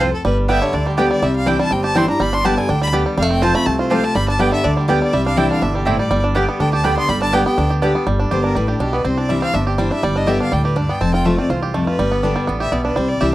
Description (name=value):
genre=bluegrass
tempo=245 BPM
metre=4/4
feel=straight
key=G mixolydian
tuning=A4 = 438 Hz
part: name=clear fiddle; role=melody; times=0.0-13.3 s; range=D4 to C6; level=-22 LUFS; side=left 1 dB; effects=none
part: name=picked steel-string acoustic guitar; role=accompaniment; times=0.0-13.3 s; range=E2 to G4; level=-20 LUFS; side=left 2 dB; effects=none
part: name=mandolin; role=stabs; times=0.0-7.9 s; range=B3 to A5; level=-20 LUFS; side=right 4 dB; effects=none
part: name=upright bass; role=bass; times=0.0-13.3 s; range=F1 to D2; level=-21 LUFS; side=equal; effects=none
part: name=bluegrass banjo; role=arpeggios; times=0.2-13.3 s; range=D3 to G4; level=-22 LUFS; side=right 3 dB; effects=none
room=little or no reverb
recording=dry, close 1970s-style studio recording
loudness=-15 LUFS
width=side -15 dB against mid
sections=0.0-8.1 A section; 8.1-13.3 B section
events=fiddle solo 0.0-8.1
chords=0.2 G; 1.2 Cadd9; 2.2 G; 3.2 F; 4.2 G; 5.1 Cadd9; 6.1 G; 9.0 Cadd9; 10.0 G; 11.0 F; 12.0 G